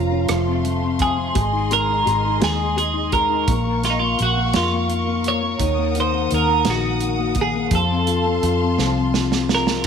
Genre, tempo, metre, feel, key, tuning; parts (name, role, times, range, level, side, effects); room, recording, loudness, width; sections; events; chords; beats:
six-eight pop ballad; 57 BPM (dotted quarters); 6/8; straight; A4 = 440 Hz
twelve-string electric guitar; melody; 0.0-9.9 s; Eb4 to Db5; -21 LUFS; right 3 dB; wide subtle chorus
felt-muted upright piano; accompaniment; 0.0-9.9 s; Eb3 to F4; -24 LUFS; left 10 dB
warm studio string section; sustained chords; 0.0-9.8 s; A3 to Eb6; -28 LUFS; left 1 dB
vintage muted fingered electric bass; bass; 0.0-9.9 s; F1 to F2; -24 LUFS; right 1 dB
natural country drum kit; drums; 0.3-9.9 s; crash cymbal, hi-hat, kick drum, rim click, snare drum; -24 LUFS; right 5 dB
light reverb, small room reverb; 1960s-style stereo; -17 LUFS; side -7 dB against mid
0.0-9.9 A section
drum fill 8.8-9.9
0.3 F; 1.4 Ab; 3.5 Bbm; 5.6 Ebm; 7.7 F
0.29 | 1.36 2.42 | 3.48 4.54 | 5.60 6.66 | 7.72 8.78 | 9.86